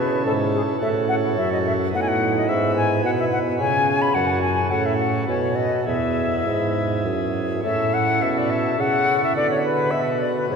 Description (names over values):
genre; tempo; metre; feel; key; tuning
classical, baroque-style sonata movement with continuo; 106 BPM; 3/4; rubato; E major; A4 = 442 Hz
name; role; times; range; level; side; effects
bright concert flute; melody; 0.0-10.6 s; G#4 to B5; -22 LUFS; left 3 dB; none
pipe organ, principal chorus; accompaniment; 0.0-10.6 s; E2 to B4; -24 LUFS; right 2 dB; none
dark bassoon; bass; 0.0-10.6 s; E2 to D3; -24 LUFS; right 2 dB; none
room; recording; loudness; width
wet cathedral reverb, RT60 5.5 s; recorded in a church or concert hall; -19 LUFS; side -6 dB against mid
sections
0.0-7.7 A section; 7.7-10.6 A section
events
none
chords
0.0 A; 0.8 F#m/A; 1.9 B7/A; 2.5 E/G#; 3.6 C#7; 4.2 F#m; 4.7 F#m/A; 5.3 B7; 5.9 E; 7.7 A; 8.8 A/C#; 9.4 Bm